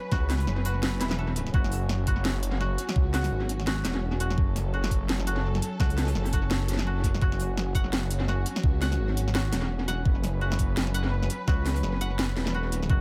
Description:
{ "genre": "half-time drum and bass", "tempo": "169 BPM", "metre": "4/4", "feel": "swing 58% on 16ths, half-time", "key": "F# minor", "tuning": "A4 = 440 Hz", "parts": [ { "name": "dark studio string section", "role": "sustained chords", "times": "0.0-13.0 s", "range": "F#3 to B4", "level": "-38 LUFS", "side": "equal", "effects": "sidechain pumping" }, { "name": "koto", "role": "arpeggios", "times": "0.0-13.0 s", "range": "E4 to F#5", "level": "-39 LUFS", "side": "equal", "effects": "dub echo" }, { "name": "dark detuned saw bass", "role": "bass", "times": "0.1-13.0 s", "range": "E1 to C#2", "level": "-30 LUFS", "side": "equal", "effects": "none" }, { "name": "drum and bass drum kit", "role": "drums", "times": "0.1-12.9 s", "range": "hi-hat, snare drum", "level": "-34 LUFS", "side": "equal", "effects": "tape echo" }, { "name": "electronic kick drum", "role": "drums", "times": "0.1-13.0 s", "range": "none", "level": "-27 LUFS", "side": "equal", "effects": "none" } ], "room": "light reverb, digital ambience", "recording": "echo-heavy mix", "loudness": "-27 LUFS", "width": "mono", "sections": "0.0-13.0 A section", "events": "none", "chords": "0.0 F#5" }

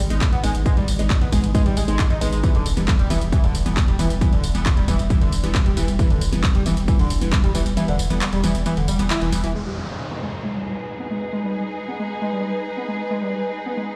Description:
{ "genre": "driving peak-time techno", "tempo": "135 BPM", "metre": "4/4", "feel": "straight", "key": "G# harmonic minor", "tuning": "A4 = 440 Hz", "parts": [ { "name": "saturated sub bass", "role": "bass", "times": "0.0-9.5 s", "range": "E1 to G#1", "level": "-26 LUFS", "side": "equal", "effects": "tube saturation, sidechain pumping, low-pass filter" }, { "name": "wavetable chord stab", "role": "stabs", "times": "0.1-9.5 s", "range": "E3 to D#4", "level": "-28 LUFS", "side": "equal", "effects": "sidechain pumping, digital delay" }, { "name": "techno drum kit", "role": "drums", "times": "0.1-9.5 s", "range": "handclaps, hi-hat, ride cymbal, tambourine", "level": "-31 LUFS", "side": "equal", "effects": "low-pass filter on hats, low-pass filter on cymbals, low-pass filter on perc, low-pass filter on snare, low-pass filter on room" }, { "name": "electronic kick drum", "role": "drums", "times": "0.2-7.4 s", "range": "none", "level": "-21 LUFS", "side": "equal", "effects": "none" }, { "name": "overdriven synth lead", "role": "riff", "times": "0.3-13.8 s", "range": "D3 to E4", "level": "-29 LUFS", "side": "equal", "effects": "tube saturation, lush chorus, sidechain pumping, tape echo" }, { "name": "downlifter", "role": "sound effects", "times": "9.5-13.1 s", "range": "none", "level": "-35 LUFS", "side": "equal", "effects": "none" }, { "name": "rich symphonic string section", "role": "texture", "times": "9.5-14.0 s", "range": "D#4 to B4", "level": "-30 LUFS", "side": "equal", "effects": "sidechain pumping" } ], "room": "light reverb", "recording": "played on a big sound system in a bare room, large studio reverb", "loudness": "-21 LUFS", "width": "mono", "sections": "0.0-9.5 A section; 9.5-14.0 B section", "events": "drop 0.0-9.5; kick drops out 7.8-9.5; band accent 9.1", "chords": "0.0 G#m; 2.4 Em; 9.5 G#m" }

